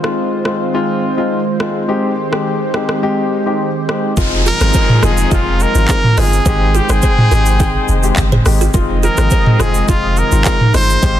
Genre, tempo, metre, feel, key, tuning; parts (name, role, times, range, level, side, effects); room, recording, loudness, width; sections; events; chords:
afrobeats; 105 BPM; 4/4; straight; F minor; A4 = 440 Hz
warm baby grand piano; accompaniment; 0.0-11.2 s; Ab3 to G5; -20 LUFS; left 4 dB
warm analog pad; sustained chords; 0.0-11.2 s; C3 to C5; -21 LUFS; right 2 dB; chorus
afro-pop drum kit; drums; 0.0-11.2 s; handclaps, hi-hat, kick drum, rim click, shaker, toms; -16 LUFS; equal; soft clipping on snare
mellow horn section; second line; 4.2-11.2 s; F3 to G5; -24 LUFS; left 3 dB
buzzing kalimba; riff; 4.2-11.1 s; Eb4 to Eb5; -25 LUFS; right 6 dB
punchy sub bass; bass; 4.2-11.2 s; F1 to Ab1; -15 LUFS; equal
downlifter; sound effects; 4.2-8.7 s; -25 LUFS; equal
clear trumpet; melody; 4.5-11.2 s; F4 to C5; -18 LUFS; right 1 dB; tape echo
light reverb, small room reverb; dense, heavily limited modern master; -11 LUFS; side -11 dB against mid
0.0-4.2 A section; 4.2-11.2 B section
kick muted 3.0-4.2
0.0 Fm7; 1.9 Abmaj7; 4.2 Fm7